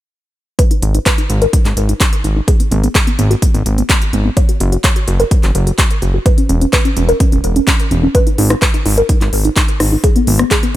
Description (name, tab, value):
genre	progressive house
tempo	127 BPM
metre	4/4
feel	straight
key	G# minor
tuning	A4 = 440 Hz
part	soft round pluck	arpeggios	0.6-10.7 s	B3 to C#5	-18 LUFS	equal	lush chorus, sidechain pumping, tape echo
part	deep house drum kit	drums	0.6-10.7 s	handclaps, hi-hat, rim click	-18 LUFS	equal	none
part	electronic kick drum	drums	0.6-10.6 s	none	-13 LUFS	equal	none
part	fat analog bass	bass	0.8-10.4 s	E1 to G#1	-14 LUFS	equal	sidechain pumping
room	digital ambience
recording	none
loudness	-11 LUFS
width	side -14 dB against mid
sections	0.6-10.8 A section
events	filter sweep on synth pluck 0.6-10.8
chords	0.6 G#5; 2.5 G#m; 4.4 N.C.; 6.3 C#m/E; 8.1 G#5; 10.0 G#m